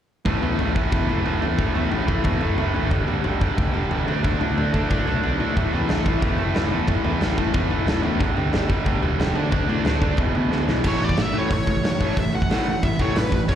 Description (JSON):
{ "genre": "punk rock", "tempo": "182 BPM", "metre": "4/4", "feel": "straight", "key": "unclear", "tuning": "A4 = 440 Hz", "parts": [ { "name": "distorted electric guitar", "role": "riff", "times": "0.3-13.6 s", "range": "E2 to D4", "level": "-25 LUFS", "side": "right 9 dB", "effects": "distortion, slapback echo" }, { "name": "raw garage guitar", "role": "riff", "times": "0.3-13.6 s", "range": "E2 to D4", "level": "-27 LUFS", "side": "left 11 dB", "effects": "overdrive, slapback echo" }, { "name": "modern bright picked electric bass", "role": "bass", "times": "0.3-13.6 s", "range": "E1 to A2", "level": "-26 LUFS", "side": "equal", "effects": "none" }, { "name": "big rock drum kit", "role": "drums", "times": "0.3-13.6 s", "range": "crash cymbal, hi-hat, kick drum, snare drum, toms", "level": "-23 LUFS", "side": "equal", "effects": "none" }, { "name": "high-gain lead guitar", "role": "melody", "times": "10.9-13.6 s", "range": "B4 to F#5", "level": "-26 LUFS", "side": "equal", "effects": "distortion" } ], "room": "studio ambience", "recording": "live gig heard through the venue's PA, recital hall reverb", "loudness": "-19 LUFS", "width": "side -10 dB against mid", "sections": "0.3-10.8 A section; 10.8-13.6 B section", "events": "drum fill 10.5-10.8", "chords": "0.3 A5; 2.9 G5; 4.1 D5; 5.6 A5; 8.2 G5; 9.4 D5; 10.2 E5; 10.8 A", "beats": "| 0.26 0.59 0.92 1.26 | 1.59 1.92 2.25 2.58 | 2.92 3.25 3.58 3.91 | 4.24 4.57 4.90 5.23 | 5.56 5.89 6.22 6.55 | 6.88 7.21 7.55 7.88 | 8.21 8.54 8.87 9.20 | 9.53 9.86 10.19 10.52 | 10.85 11.18 11.51 11.84 | 12.17 12.50 12.83 13.16 | 13.49" }